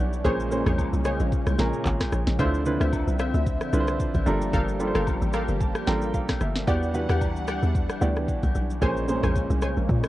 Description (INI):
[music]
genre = amapiano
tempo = 112 BPM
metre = 4/4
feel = swing 55% on 16ths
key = unclear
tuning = A4 = 436 Hz
[part]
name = warm baby grand piano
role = accompaniment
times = 0.0-10.1 s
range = Bb2 to Bb5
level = -28 LUFS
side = right 2 dB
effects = none
[part]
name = lush unison pad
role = sustained chords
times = 0.0-10.1 s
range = Db3 to F#5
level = -32 LUFS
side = left 1 dB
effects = chorus, sidechain pumping
[part]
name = hollow log drum bass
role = bass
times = 0.0-10.0 s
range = G1 to Bb2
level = -26 LUFS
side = equal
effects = none
[part]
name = smooth R&B drum kit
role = drums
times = 0.1-10.1 s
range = handclaps, kick drum, rim click, shaker, snare drum, toms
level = -28 LUFS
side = equal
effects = none
[part]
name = analog pluck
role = stabs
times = 0.2-9.9 s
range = F4 to Ab5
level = -34 LUFS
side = left 1 dB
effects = chorus, tape echo
[part]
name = agogo bells and woodblock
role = percussion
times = 0.2-10.1 s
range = none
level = -40 LUFS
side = left 6 dB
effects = none
[sound]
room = little or no reverb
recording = cassette tape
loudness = -22 LUFS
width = side -16 dB against mid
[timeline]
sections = 0.0-10.1 A section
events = grand piano fill 5.1-6.7, 9.9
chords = 0.2 Bbm9; 2.4 Dm9; 4.3 Gm9; 6.7 Em9; 8.8 Bbm9